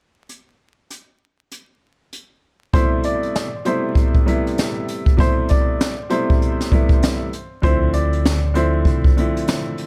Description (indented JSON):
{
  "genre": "hip hop, boom-bap hip-hop",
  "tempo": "98 BPM",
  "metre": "4/4",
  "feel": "swing 60% on 16ths",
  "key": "A minor",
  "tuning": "A4 = 439 Hz",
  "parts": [
    { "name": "jazz brush drum kit", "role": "drums", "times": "0.3-9.9 s", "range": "hi-hat, kick drum, snare drum", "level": "-20 LUFS", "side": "equal", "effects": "none" },
    { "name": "clear upright piano", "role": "melody", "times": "2.7-9.0 s", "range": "C5 to D5", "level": "-28 LUFS", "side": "equal", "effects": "high-pass filter, low-pass filter, delay" },
    { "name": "clear upright piano", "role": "accompaniment", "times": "2.7-9.9 s", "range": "B2 to E4", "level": "-24 LUFS", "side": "equal", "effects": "cassette tape, high-pass filter, low-pass filter" },
    { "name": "deep dub fingered electric bass", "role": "bass", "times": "7.6-9.1 s", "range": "C2 to D2", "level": "-22 LUFS", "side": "equal", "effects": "none" }
  ],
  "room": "little or no reverb",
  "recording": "vinyl crackle",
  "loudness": "-18 LUFS",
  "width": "mono",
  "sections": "0.3-2.7 A section; 2.7-9.9 B section",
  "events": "none",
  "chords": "0.3 N.C.; 2.7 Am7; 7.6 Dm7"
}